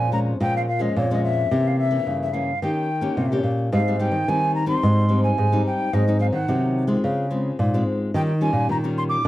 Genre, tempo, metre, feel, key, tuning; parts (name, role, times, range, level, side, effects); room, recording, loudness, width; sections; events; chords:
samba and choro; 109 BPM; 4/4; straight; Ab major from 3.7 s; A4 = 440 Hz
mellow silver concert flute; melody; 0.0-9.3 s; Db5 to D6; -25 LUFS; equal; slapback echo
nylon-string guitar; accompaniment; 0.0-9.3 s; F2 to G4; -24 LUFS; left 1 dB
nylon-string guitar; bass; 0.0-9.3 s; Ab2 to Eb3; -22 LUFS; equal
light reverb; dry, close 1970s-style studio recording; -19 LUFS; side -15 dB against mid
0.0-3.7 A section; 3.7-9.3 B section
0.0 Bbm7; 1.5 C7b9; 2.6 Eb7; 3.7 Abmaj7; 5.9 Ab7; 7.0 Dbmaj7; 8.1 Eb9